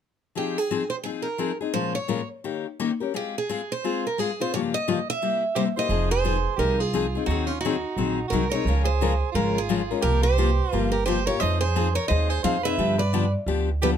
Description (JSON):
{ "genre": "acoustic string swing (jazz manouche)", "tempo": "174 BPM", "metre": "4/4", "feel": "swing 61% on 8ths", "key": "F minor", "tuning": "A4 = 440 Hz", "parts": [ { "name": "picked steel-string acoustic guitar", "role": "melody", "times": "0.4-13.9 s", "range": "F4 to F5", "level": "-27 LUFS", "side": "right 3 dB", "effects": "none" }, { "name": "picked steel-string acoustic guitar", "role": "accompaniment", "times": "0.4-13.9 s", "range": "G2 to Bb4", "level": "-26 LUFS", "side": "left 8 dB", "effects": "none" }, { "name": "bright soprano saxophone", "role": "second line", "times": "5.6-13.9 s", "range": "Db4 to C5", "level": "-31 LUFS", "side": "right 8 dB", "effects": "none" }, { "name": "upright bass", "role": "bass", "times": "5.9-14.0 s", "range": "F1 to G2", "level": "-25 LUFS", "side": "right 1 dB", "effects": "none" } ], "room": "little or no reverb", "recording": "close, detailed microphones", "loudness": "-22 LUFS", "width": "side -9 dB against mid", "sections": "0.4-5.9 A section; 5.9-14.0 B section", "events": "none", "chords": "0.4 Fm7; 1.7 Bbm7; 2.4 Eb7; 3.1 Ab6; 4.5 Gm7b5; 5.2 C7; 5.9 Fm7; 7.3 Ab7/Eb; 8.7 Db6; 10.0 C7sus4; 11.4 Fm7; 12.8 G7" }